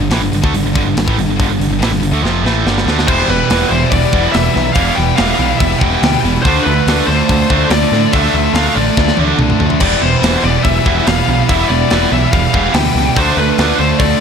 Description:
heavy metal; 143 BPM; 4/4; straight; E phrygian; A4 = 440 Hz
high-gain distorted guitar; riff; 0.0-14.2 s; F2 to D4; -20 LUFS; left 15 dB; distortion
high-gain distorted guitar; riff; 0.0-14.2 s; E2 to D4; -17 LUFS; right 12 dB; distortion
growling picked electric bass; bass; 0.0-14.1 s; E1 to A2; -17 LUFS; left 1 dB; overdrive
tight metal drum kit; drums; 0.1-14.1 s; crash cymbal, hi-hat, kick drum, snare drum, splash cymbal, toms; -18 LUFS; equal
high-gain lead guitar; melody; 3.1-14.2 s; B4 to G5; -17 LUFS; left 3 dB; distortion, ping-pong delay
biting overdriven guitar; riff; 3.1-14.2 s; D3 to F4; -20 LUFS; left 1 dB
light reverb; -10 LUFS; side -6 dB against mid
0.0-3.1 A section; 3.1-14.2 B section
drum fill 2.2-3.1, 9.0-9.8
0.0 G5; 3.1 Em; 6.4 Dm; 9.8 Em; 13.2 Dm

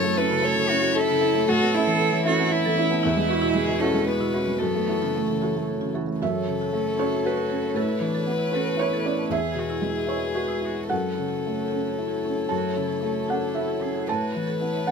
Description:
neoclassical piano and strings; 114 BPM; 3/4; rubato; F# minor; A4 = 437 Hz
rich violin; melody; 0.0-14.9 s; E4 to C#5; -27 LUFS; left 8 dB
warm cello; second line; 0.0-14.9 s; A3 to A4; -29 LUFS; right 6 dB
felt-muted upright piano; accompaniment; 0.0-14.9 s; E2 to A5; -26 LUFS; right 2 dB
dark analog pad; sustained chords; 0.0-14.9 s; E3 to C#5; -34 LUFS; right 1 dB; chorus
marimba with hard mallets; arpeggios; 0.0-14.9 s; E4 to A5; -34 LUFS; right 8 dB; slapback echo
light reverb; -22 LUFS; side -6 dB against mid
0.0-6.2 A section; 6.2-14.9 B section
0.0 F#m7; 1.5 Aadd9; 3.0 Eadd9; 4.6 F#m7; 7.8 Aadd9; 9.3 Eadd9; 10.9 F#m7; 14.1 Aadd9

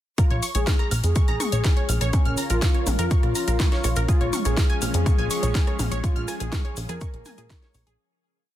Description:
melodic techno; 123 BPM; 4/4; straight; Bb minor; A4 = 439 Hz
soft octave-layered synth lead; melody; 0.2-7.9 s; Db4 to Bb4; -31 LUFS; left 1 dB; chorus, sidechain pumping, tape echo
wide unison pluck; arpeggios; 0.2-7.9 s; Ab4 to Bb6; -32 LUFS; right 1 dB; sidechain pumping, ping-pong delay
electronic kick drum; drums; 0.2-7.6 s; -21 LUFS; equal; overdrive, studio ambience
house drum kit; drums; 0.2-8.0 s; hi-hat, rim click, snare drum, toms; -30 LUFS; left 2 dB; overdrive, studio ambience
cabasa; percussion; 0.2-8.0 s; -36 LUFS; right 3 dB
granular cloud pad; texture; 1.6-8.0 s; Db4 to F5; -35 LUFS; equal; built-in reverb, sidechain pumping
plucky analog bass; bass; 0.3-8.0 s; Bb1 to Bb2; -24 LUFS; equal; sidechain pumping
lush unison pad; sustained chords; 4.1-8.0 s; F3 to Db4; -34 LUFS; equal; chorus, vintage 12-bit sampler grit, sidechain pumping
little or no reverb; dense, heavily limited modern master; -20 LUFS; side -13 dB against mid
0.2-8.0 drop
drop 0.2-8.0; fade-out 5.4-8.0
0.2 Bbm; 4.1 Db/Bb

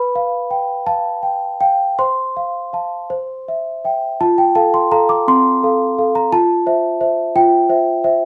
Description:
classical, lullaby for celesta; 52-59 BPM (dotted quarters); 6/8; rubato; F major; A4 = 440 Hz
celesta; solo; 0.0-8.3 s; C4 to D6; -17 LUFS; equal
wet studio reverb, RT60 0.6 s; band playing live in one room; -17 LUFS; mono
0.0-4.2 A section; 4.2-8.3 B section
0.0 G7/B; 2.0 F/C; 3.1 C; 4.2 F; 6.3 C/F

